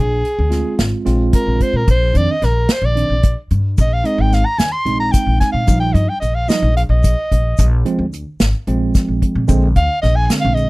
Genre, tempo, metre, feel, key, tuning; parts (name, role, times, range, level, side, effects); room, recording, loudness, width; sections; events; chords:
progressive instrumental, band music in an uneven meter; 221 BPM (eighths); 7/8; straight; Bb mixolydian; A4 = 441 Hz
breathy soprano saxophone; melody; 0.0-10.7 s; Ab4 to C6; -19 LUFS; equal
upright bass; bass; 0.0-10.7 s; Ab1 to Bb2; -16 LUFS; equal
unplugged drum kit; drums; 0.2-10.7 s; hi-hat, kick drum, snare drum; -15 LUFS; equal
tine electric piano; accompaniment; 0.5-10.7 s; D3 to F4; -19 LUFS; right 3 dB; medium stereo tremolo
tube shaker; percussion; 3.8-10.7 s; -36 LUFS; left 9 dB
little or no reverb; dry, close 1970s-style studio recording, faint mains hum; -13 LUFS; side -22 dB against mid
0.0-10.7 A section
soprano saxophone solo 0.0-10.7
0.0 Fm; 1.9 Cmadd9/Bb; 3.8 Bb7sus4; 5.7 Ebadd9/Bb; 7.6 Fm; 9.5 Bb7